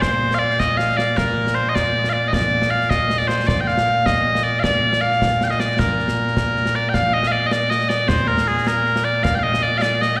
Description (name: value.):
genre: scottish traditional, Scottish pipe music.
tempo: 104 BPM (dotted quarters).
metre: 6/8.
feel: straight.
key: Bb major.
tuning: A4 = 439 Hz.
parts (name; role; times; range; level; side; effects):
mellow small bagpipes; melody; 0.0-10.2 s; Bb2 to G5; -20 LUFS; equal; slapback echo, tape echo.
concert snare drum and concert bass drum; drums; 0.0-10.2 s; none; -26 LUFS; equal; slapback echo.
room: moderate club reverb, RT60 0.5 s.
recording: live gig heard through the venue's PA, recital hall reverb.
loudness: -19 LUFS.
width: mono.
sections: 0.0-6.9 A section; 6.9-10.2 B section.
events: none.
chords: none.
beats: | 0.02 0.60 | 1.18 1.75 | 2.33 2.90 | 3.48 4.06 | 4.64 5.21 | 5.79 6.37 | 6.94 7.52 | 8.10 8.68 | 9.25 9.83.